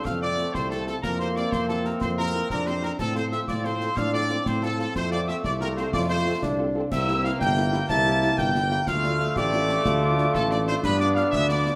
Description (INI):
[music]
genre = military-style march for wind band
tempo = 122 BPM (dotted quarters)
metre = 6/8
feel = straight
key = F major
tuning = A4 = 437 Hz
[part]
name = mellow trumpet section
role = melody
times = 0.0-11.8 s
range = A4 to A5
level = -31 LUFS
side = equal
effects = none
[part]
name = clear euphonium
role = second line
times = 0.0-11.8 s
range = A3 to G4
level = -31 LUFS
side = equal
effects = none
[part]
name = wooden piccolo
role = second line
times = 0.0-11.8 s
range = A5 to A6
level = -33 LUFS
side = equal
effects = none
[part]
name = clear trombone section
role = sustained chords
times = 0.0-11.8 s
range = E3 to C4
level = -35 LUFS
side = equal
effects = none
[part]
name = mellow tuba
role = bass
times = 0.1-11.7 s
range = G1 to A2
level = -30 LUFS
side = equal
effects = none
[part]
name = concert snare drum, concert bass drum and clash cymbals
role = drums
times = 0.1-11.8 s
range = none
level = -37 LUFS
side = equal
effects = none
[part]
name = warm French horn section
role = accompaniment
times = 0.2-11.7 s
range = A3 to A4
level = -38 LUFS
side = equal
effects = none
[sound]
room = wet large studio reverb, RT60 1.4 s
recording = none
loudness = -24 LUFS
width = mono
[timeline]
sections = 0.0-11.8 A section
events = none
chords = 0.0 F; 1.0 C7/F; 3.0 F/A; 5.0 F; 6.9 C7; 8.9 Dm; 10.8 G7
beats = | 0.06 0.55 | 1.03 1.52 | 2.02 2.50 | 3.00 3.48 | 3.98 4.46 | 4.96 5.45 | 5.93 6.42 | 6.92 7.41 | 7.89 8.38 | 8.88 9.37 | 9.86 10.35 | 10.84 11.32